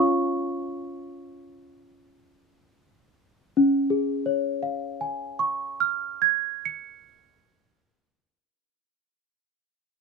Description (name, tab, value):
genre	classical, lullaby for celesta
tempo	28-38 BPM (dotted quarters)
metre	6/8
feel	straight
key	Db major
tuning	A4 = 440 Hz
part	small celesta	solo	0.0-10.0 s	Db4 to Db7	-23 LUFS	equal	none
room	moderate small room reverb, RT60 0.5 s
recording	close, detailed microphones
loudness	-23 LUFS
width	side -4 dB against mid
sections	0.0-3.6 A section; 3.6-7.8 B section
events	slowing down 0.0-3.6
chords	0.0 Db